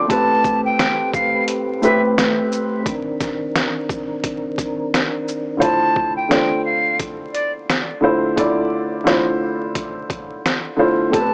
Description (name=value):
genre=hip hop, boom-bap hip-hop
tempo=87 BPM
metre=4/4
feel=swing 60% on 16ths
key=unclear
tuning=A4 = 440 Hz
part: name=dark upright piano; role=accompaniment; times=0.0-11.3 s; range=A2 to D6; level=-21 LUFS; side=equal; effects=high-pass filter, low-pass filter
part: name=percussive tonewheel organ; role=sustained chords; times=0.0-5.6 s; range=Eb3 to B4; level=-26 LUFS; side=equal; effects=chorus vibrato, slow rotary speaker, high-pass filter, low-pass filter
part: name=breathy silver concert flute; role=melody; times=0.1-11.3 s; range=D5 to A5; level=-22 LUFS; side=equal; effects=high-pass filter, low-pass filter, analog delay
part: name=trip hop sampler-style drum kit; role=drums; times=0.1-11.3 s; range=hi-hat, kick drum, shaker, snare drum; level=-24 LUFS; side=equal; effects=none
room=little or no reverb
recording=dry, gritty hardware recording, vinyl crackle, small speaker sound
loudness=-19 LUFS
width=mono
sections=0.0-5.6 A section; 5.6-11.3 B section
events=break 2.9-5.6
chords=0.1 Am9; 2.9 Cm9; 5.6 Dm9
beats=| 0.10 0.79 1.48 2.17 | 2.86 3.55 4.24 4.93 | 5.62 6.31 7.00 7.68 | 8.38 9.06 9.75 10.44 | 11.13